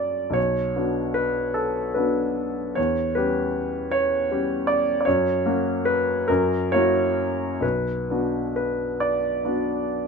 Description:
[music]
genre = classical, romantic character piece for solo piano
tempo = 43-53 BPM (dotted quarters)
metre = 6/8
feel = rubato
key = B minor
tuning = A4 = 436 Hz
[part]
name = clear grand piano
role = solo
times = 0.0-10.1 s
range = B1 to D5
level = -21 LUFS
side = equal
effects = none
[sound]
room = light reverb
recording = close, detailed microphones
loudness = -21 LUFS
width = side -5 dB against mid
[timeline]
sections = 0.0-10.1 A section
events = none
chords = 0.4 Bm; 2.8 C#dim/E; 5.1 F#; 6.3 F#7; 7.6 Bm

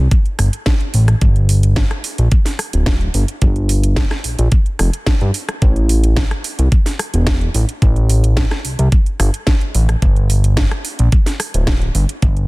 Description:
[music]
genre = nu-disco, nu disco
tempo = 109 BPM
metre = 4/4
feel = straight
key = G dorian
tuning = A4 = 440 Hz
[part]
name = fat analog bass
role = bass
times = 0.0-12.5 s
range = D1 to G2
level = -13 LUFS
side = equal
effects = none
[part]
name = electronic kick drum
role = drums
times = 0.1-12.3 s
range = none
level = -14 LUFS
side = equal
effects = none
[part]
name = house drum kit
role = drums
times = 0.1-12.5 s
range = hi-hat, rim click, snare drum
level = -23 LUFS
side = right 1 dB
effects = none
[sound]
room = digital ambience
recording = dense, heavily limited modern master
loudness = -13 LUFS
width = side -23 dB against mid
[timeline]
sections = 0.0-12.5 A section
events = none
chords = none

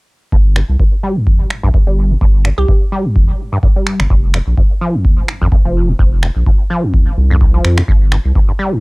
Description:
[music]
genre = acid house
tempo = 127 BPM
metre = 4/4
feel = swing 55% on 16ths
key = G minor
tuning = A4 = 440 Hz
[part]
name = acid bass, saw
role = riff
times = 0.3-8.8 s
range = F1 to G3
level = -18 LUFS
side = equal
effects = overdrive, analog chorus, cassette tape, sidechain pumping, tape echo
[part]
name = saturated sub bass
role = bass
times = 0.3-8.3 s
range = F1 to F2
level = -13 LUFS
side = equal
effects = sidechain pumping
[part]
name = electronic kick drum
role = drums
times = 0.3-8.5 s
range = none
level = -12 LUFS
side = equal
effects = none
[part]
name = electronic finger snaps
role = drums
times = 0.6-8.2 s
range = none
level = -20 LUFS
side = right 1 dB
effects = none
[part]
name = glassy wavetable pluck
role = melody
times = 2.6-2.9 s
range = G4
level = -23 LUFS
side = right 3 dB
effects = chorus, tape echo
[sound]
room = little or no reverb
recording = dry, gritty hardware recording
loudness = -10 LUFS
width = side -28 dB against mid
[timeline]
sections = 0.3-8.8 A section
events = filter sweep on acid bass 0.3-8.8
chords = none

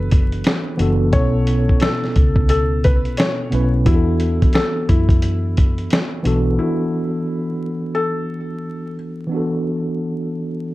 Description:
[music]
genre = lo-fi hip hop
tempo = 88 BPM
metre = 4/4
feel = swing 65% on 16ths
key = unclear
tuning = A4 = 440 Hz
[part]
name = felt-muted upright piano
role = melody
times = 0.0-8.9 s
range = E4 to C#5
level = -25 LUFS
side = left 3 dB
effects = tape echo
[part]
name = mellow tine electric piano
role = accompaniment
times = 0.0-10.7 s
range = B2 to B4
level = -22 LUFS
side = equal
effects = medium stereo tremolo
[part]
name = vintage muted fingered electric bass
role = bass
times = 0.0-6.6 s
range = F#1 to F#2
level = -19 LUFS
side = equal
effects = none
[part]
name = dusty soul sampler-style drum kit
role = drums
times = 0.1-6.5 s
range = hi-hat, kick drum, snare drum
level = -16 LUFS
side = equal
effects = vintage 12-bit sampler grit
[sound]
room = light reverb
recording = dark, warm production, vinyl crackle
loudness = -16 LUFS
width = side -18 dB against mid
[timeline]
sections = 0.0-6.6 A section; 6.6-10.7 B section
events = none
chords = 0.0 E9sus4; 1.1 B9sus4; 3.9 E9sus4

